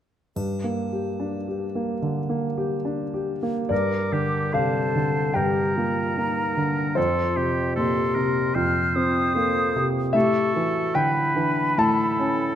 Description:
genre	cinematic, emotional film score for orchestra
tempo	74 BPM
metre	4/4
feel	rubato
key	G minor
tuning	A4 = 440 Hz
part	clear concert grand piano	accompaniment	0.4-12.6 s	F2 to A5	-23 LUFS	equal	none
part	triangle	percussion	0.4-2.0 s	none	-50 LUFS	left 5 dB	none
part	clear oboe	second line	3.7-12.6 s	G4 to C5	-28 LUFS	right 2 dB	none
part	dark clarinet	second line	3.7-12.6 s	D4 to Bb4	-28 LUFS	left 2 dB	none
part	mellow silver concert flute	second line	3.7-12.6 s	A5 to F6	-28 LUFS	left 1 dB	none
room	moderate scoring stage reverb, RT60 1.6 s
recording	close, detailed microphones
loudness	-21 LUFS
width	side -10 dB against mid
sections	0.4-3.7 A section; 3.7-12.6 B section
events	none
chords	0.4 Gm; 7.0 Fsus4; 10.1 A7

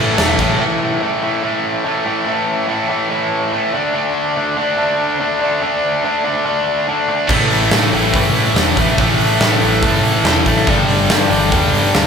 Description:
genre	hard rock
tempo	143 BPM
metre	4/4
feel	straight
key	unclear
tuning	A4 = 440 Hz
part	distorted electric guitar	riff	0.0-12.1 s	G2 to D4	-16 LUFS	equal	overdrive
part	heavy high-gain guitar	riff	0.0-0.6, 7.3-12.1 s	G2 to A3	-17 LUFS	equal	distortion
part	overdriven picked electric bass	bass	0.0-0.6, 7.3-12.1 s	E1 to A2	-20 LUFS	equal	none
part	huge arena drum kit	drums	0.2-0.5, 7.3-12.0 s	crash cymbal, hi-hat, kick drum, snare drum	-17 LUFS	equal	none
room	moderate large studio reverb, RT60 1.3 s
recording	band playing live in one room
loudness	-13 LUFS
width	side -6 dB against mid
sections	0.6-12.1 A section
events	none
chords	0.0 A5; 3.7 D5; 7.3 A5; 10.7 G5

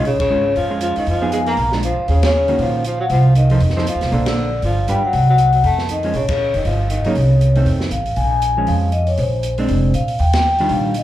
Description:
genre	jazz, small-group swing and bop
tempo	236 BPM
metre	4/4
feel	swing 58% on 8ths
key	Bb minor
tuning	A4 = 440 Hz
part	vibraphone with soft mallets	melody	0.0-11.0 s	C5 to Bb5	-19 LUFS	left 3 dB	slapback echo
part	breathy tenor saxophone	second line	0.0-7.6 s	Db3 to Bb3	-25 LUFS	right 3 dB	slapback echo
part	hollow-body jazz guitar	accompaniment	0.0-10.9 s	Eb3 to C5	-23 LUFS	right 2 dB	slapback echo
part	upright bass	bass	0.0-11.0 s	F1 to Bb2	-17 LUFS	right 1 dB	none
part	open jazz drum kit	drums	0.0-11.0 s	hi-hat, kick drum, ride cymbal, snare drum	-29 LUFS	equal	none
room	small room ambience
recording	live gig heard through the venue's PA, club reverb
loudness	-14 LUFS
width	side -13 dB against mid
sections	0.1-8.2 A section; 8.2-11.0 B section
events	band accent 0.2, 2.2, 4.2, 6.3, 10.3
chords	0.1 Bbm7; 1.1 Fm7b5; 1.6 Bb7; 2.1 Ebm7; 3.1 F7; 4.1 Bbmaj9; 4.6 G7; 5.1 N.C.; 5.6 F7; 6.1 Bbm; 6.7 Eb9/G; 7.2 A; 7.7 F7; 8.2 Bbm7; 9.2 Bb9; 10.2 Ebmaj9

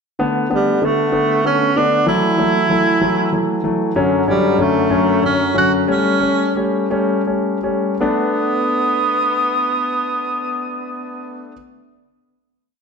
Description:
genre	six-eight pop ballad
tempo	54-64 BPM (dotted quarters)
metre	6/8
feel	straight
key	B minor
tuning	A4 = 441 Hz
part	warm concert grand piano	accompaniment	0.2-11.5 s	F#2 to D4	-17 LUFS	left 2 dB	none
part	clear tenor saxophone	melody	0.5-11.5 s	G3 to F#4	-18 LUFS	right 2 dB	none
room	wet recital hall reverb, RT60 1.5 s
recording	dark, warm production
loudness	-15 LUFS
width	side -5 dB against mid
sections	0.2-8.0 verse; 8.0-12.5 final chord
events	slowing down 4.0-8.0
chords	0.2 Bm7; 2.1 F#m7; 4.0 Dmaj7/F#; 5.9 A7; 8.0 Bm7

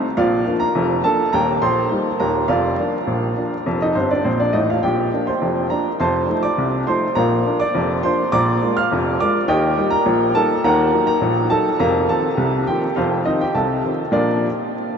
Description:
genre	ragtime piano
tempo	103 BPM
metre	2/4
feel	straight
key	Bb major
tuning	A4 = 440 Hz
part	clear upright piano	solo	0.0-14.5 s	Eb1 to F6	-16 LUFS	equal	none
room	wet huge ambient reverb, RT60 7.5 s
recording	in a vast, echoing space, vinyl crackle, nothing above 7.7 kHz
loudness	-16 LUFS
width	side -6 dB against mid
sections	0.0-14.1 A section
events	upright piano fill 4.0-4.8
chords	0.2 Bb; 1.3 Eb; 2.5 Bb/F; 3.7 F; 4.8 Bb; 6.0 F7; 7.2 Bb; 8.3 Bb7; 9.5 Eb; 10.6 Ebm; 11.8 F7sus4; 13.0 F7; 14.1 Bb

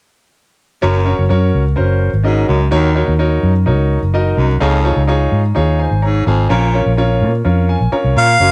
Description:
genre	soul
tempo	127 BPM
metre	4/4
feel	straight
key	unclear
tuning	A4 = 440 Hz
part	clear grand piano	accompaniment	0.8-8.5 s	Db4 to Bb5	-20 LUFS	equal	none
part	raspy baritone saxophone	riff	0.8-8.5 s	Eb2 to Bb2	-23 LUFS	equal	none
part	vintage muted fingered electric bass	bass	0.8-8.5 s	Gb1 to Bb2	-16 LUFS	equal	none
part	warm harmonica	melody	8.2-8.5 s	F5	-12 LUFS	equal	none
room	light reverb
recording	none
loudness	-14 LUFS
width	mono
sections	0.8-8.4 A section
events	grand piano fill 7.4-8.4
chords	0.8 Gb; 2.7 Ebm7; 4.6 Dbadd9; 6.5 Bbm

